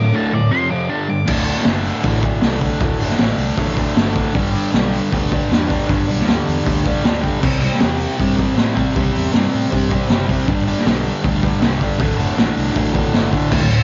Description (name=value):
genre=garage rock duo or trio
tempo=157 BPM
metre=4/4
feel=straight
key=unclear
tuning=A4 = 441 Hz
part: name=octave-fuzz lead guitar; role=melody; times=0.0-1.3 s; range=D5 to D6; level=-25 LUFS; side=equal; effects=distortion, cassette tape, tape echo
part: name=fuzz guitar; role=riff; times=0.0-13.8 s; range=D2 to C4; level=-21 LUFS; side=equal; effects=distortion, cassette tape
part: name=fingered electric bass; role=bass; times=1.3-13.8 s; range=D1 to A2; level=-25 LUFS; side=equal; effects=none
part: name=raw garage drum kit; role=drums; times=1.3-13.8 s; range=crash cymbal, hi-hat, kick drum, snare drum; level=-21 LUFS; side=equal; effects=cassette tape
room=little or no reverb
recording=home recording on cassette, nothing above 7.5 kHz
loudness=-17 LUFS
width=mono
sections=0.0-1.3 A section; 1.3-13.5 B section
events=break 0.0-1.3; lead electric guitar solo 0.0-1.3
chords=0.0 D5; 0.5 F5; 0.9 G5; 1.3 D5; 4.4 G5; 7.4 C5; 10.5 G; 12.0 D5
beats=0.14 0.52 0.90 | 1.28 1.66 2.05 2.43 | 2.81 3.20 3.58 3.97 | 4.35 4.74 5.12 5.51 | 5.89 6.28 6.66 7.05 | 7.43 7.81 8.20 8.58 | 8.96 9.34 9.72 10.10 | 10.48 10.86 11.24 11.62 | 12.00 12.38 12.76 13.14 | 13.52